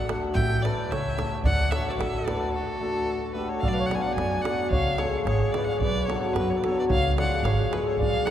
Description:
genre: balkan folk, Balkan wedding band.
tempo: 110 BPM.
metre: 2/4.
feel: swing 56% on 16ths.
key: D major, B dorian sharp4 from 3.6 s.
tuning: A4 = 441 Hz.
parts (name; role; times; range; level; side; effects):
rich violin; melody; 0.0-8.3 s; A4 to G#5; -30 LUFS; left 1 dB; none.
mellow accordion; second line; 0.0-8.3 s; F#4 to E#5; -33 LUFS; right 2 dB; none.
upright bass; bass; 0.0-8.3 s; G#1 to F#2; -28 LUFS; equal; none.
cimbalom; accompaniment; 0.1-8.3 s; E#3 to B4; -28 LUFS; left 2 dB; none.
davul; percussion; 0.1-8.3 s; none; -31 LUFS; right 1 dB; none.
room: wet cathedral reverb, RT60 4.5 s.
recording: recorded in a church or concert hall.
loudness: -23 LUFS.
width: side -10 dB against mid.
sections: 0.0-3.6 A section; 3.6-8.3 B section.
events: break 2.5-3.6.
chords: 0.4 A; 1.5 D; 3.6 Bm; 4.7 C#; 5.8 Bm; 6.9 C#.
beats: | 0.36 0.91 | 1.45 2.00 | 2.54 3.09 | 3.63 4.18 | 4.72 5.26 | 5.81 6.35 | 6.90 7.44 | 7.99.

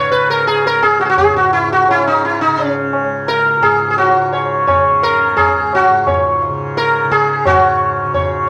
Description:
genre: indian classical, Hindustani.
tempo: 86 BPM.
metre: 4/4.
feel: straight.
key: C# raga bhimpalasi.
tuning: A4 = 440 Hz.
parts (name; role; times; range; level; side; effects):
sitar; melody; 0.0-8.5 s; C#4 to C#5; -14 LUFS; equal; none.
tanpura; drone; 0.0-8.5 s; C#2 to C#3; -25 LUFS; equal; none.
tabla; percussion; 0.5-8.4 s; none; -23 LUFS; equal; none.
room: moderate studio reverb, RT60 0.7 s.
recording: vinyl crackle.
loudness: -14 LUFS.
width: mono.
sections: 0.0-7.5 A section; 7.5-8.5 B section.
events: none.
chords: none.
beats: 0.48 1.18 | 1.89 2.59 3.29 3.98 | 4.68 5.38 6.07 6.76 | 7.45 8.14.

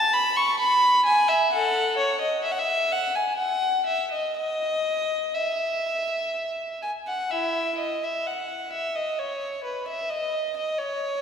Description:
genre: classical, baroque-style suite movement for unaccompanied violin.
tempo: 63 BPM.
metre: 3/4.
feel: uneven beats, rubato.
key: E major.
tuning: A4 = 440 Hz.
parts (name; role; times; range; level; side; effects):
warm violin; solo; 0.0-11.2 s; E4 to C#6; -22 LUFS; equal; none.
room: wet church reverb, RT60 2.7 s.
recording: none.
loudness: -22 LUFS.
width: side -7 dB against mid.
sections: 0.0-7.3 A section; 7.3-11.2 B section.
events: none.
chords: none.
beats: 0.59 | 1.51 2.44 3.37 | 4.36 5.36 6.35 | 7.32 8.27 9.20 | 10.12 11.04.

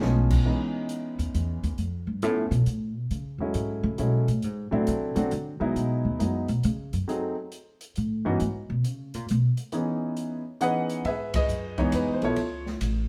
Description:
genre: jazz piano trio.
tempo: 136 BPM.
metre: 3/4.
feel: swing 66% on 8ths.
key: C# minor.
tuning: A4 = 441 Hz.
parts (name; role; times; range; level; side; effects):
clear concert grand piano; melody; 0.0-12.8 s; E3 to F#5; -30 LUFS; equal; none.
upright bass; bass; 0.0-13.1 s; A1 to D3; -29 LUFS; equal; none.
open jazz drum kit; drums; 0.0-13.0 s; crash cymbal, hi-hat, kick drum, ride cymbal, snare drum; -35 LUFS; equal; none.
room: moderate large studio reverb, RT60 0.9 s.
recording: band playing live in one room.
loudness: -27 LUFS.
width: mono.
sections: 0.5-11.1 A section; 11.1-13.1 B section.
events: upright bass solo 0.5-11.1; band accent 11.3.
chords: 0.5 C#m9; 1.8 C#7b13 (rootless); 3.1 F#m9; 4.4 D9; 5.8 Emaj9; 7.1 G#7(no3) (rootless); 8.4 C#m9; 12.4 C#aug.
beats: 0.02 | 0.46 0.90 1.34 | 1.79 2.23 2.67 | 3.11 3.55 4.00 | 4.44 4.88 5.32 | 5.76 6.20 6.64 | 7.08 7.52 7.96 | 8.40 8.85 9.29 | 9.73 10.17 10.61 | 11.05 11.49 11.93 | 12.38 12.82.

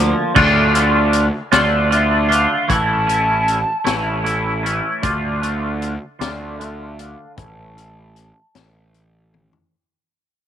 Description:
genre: psychedelic rock.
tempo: 51 BPM (dotted quarters).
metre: 6/8.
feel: straight.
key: unclear.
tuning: A4 = 440 Hz.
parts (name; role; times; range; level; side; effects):
twangy electric guitar; riff; 0.0-9.7 s; D3 to F4; -17 LUFS; equal; rotary speaker, double-tracked left and right, low-pass filter.
fuzz picked electric bass; bass; 0.0-9.5 s; A1 to D2; -21 LUFS; right 1 dB; overdrive.
vintage drum kit; drums; 0.4-9.7 s; crash cymbal, hi-hat, kick drum, snare drum, toms; -22 LUFS; left 5 dB; none.
mellow hollow silver concert flute; melody; 1.5-9.7 s; D5 to A5; -22 LUFS; equal; low-pass filter, slapback echo.
room: light reverb, small room ambience.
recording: 1960s-style stereo.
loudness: -15 LUFS.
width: side -9 dB against mid.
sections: 0.4-9.7 A section.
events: fade-out 0.4-9.7; filter sweep 0.4-9.7; drum fill 9.3-9.7.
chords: 0.4 Dm; 2.7 A; 5.0 Dm; 7.4 A.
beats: | 0.36 1.52 | 2.69 3.86 | 5.03 6.20 | 7.37 8.55.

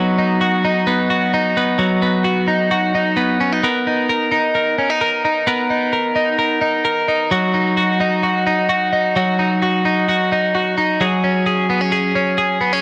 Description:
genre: indie pop.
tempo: 130 BPM.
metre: 4/4.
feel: straight.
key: unclear.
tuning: A4 = 440 Hz.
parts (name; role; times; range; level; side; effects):
twelve-string electric guitar; solo; 0.0-12.8 s; F#3 to A#4; -17 LUFS; equal; none.
room: moderate plate reverb, RT60 3.6 s.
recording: none.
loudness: -17 LUFS.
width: mono.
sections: 0.0-1.8 A section; 1.8-3.6 B section; 3.6-12.8 C section.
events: none.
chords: 0.0 B; 3.6 Bmaj7; 7.3 D#m; 11.0 F#sus2.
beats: 0.41 0.87 1.33 | 1.79 2.25 2.71 3.16 | 3.62 4.08 4.54 5.00 | 5.46 5.92 6.38 6.84 | 7.31 7.77 8.23 8.69 | 9.15 9.61 10.08 10.54 | 11.00 11.46 11.92 12.38.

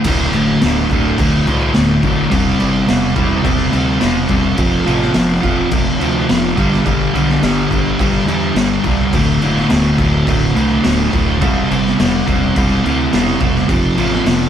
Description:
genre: garage rock duo or trio.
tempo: 106 BPM.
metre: 4/4.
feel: straight.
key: unclear.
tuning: A4 = 441 Hz.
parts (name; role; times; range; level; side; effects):
fuzz guitar; riff; 0.0-14.5 s; D2 to C4; -14 LUFS; equal; distortion.
raw garage drum kit; drums; 0.0-14.4 s; crash cymbal, kick drum, snare drum; -18 LUFS; equal; none.
fuzz picked electric bass; bass; 0.1-14.5 s; D1 to E2; -21 LUFS; equal; overdrive, tube saturation.
room: light reverb.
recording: band playing live in one room.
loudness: -12 LUFS.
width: side -9 dB against mid.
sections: 0.1-14.5 A section.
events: none.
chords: 0.1 D; 2.3 C/E; 4.6 F5; 6.6 G5; 9.1 D5; 11.4 C/E; 13.7 F.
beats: | 0.05 0.62 1.19 1.75 | 2.32 2.88 3.45 4.02 | 4.58 5.15 5.72 6.29 | 6.86 7.42 7.99 8.56 | 9.13 9.70 10.27 10.84 | 11.41 11.98 12.54 13.11 | 13.68 14.24.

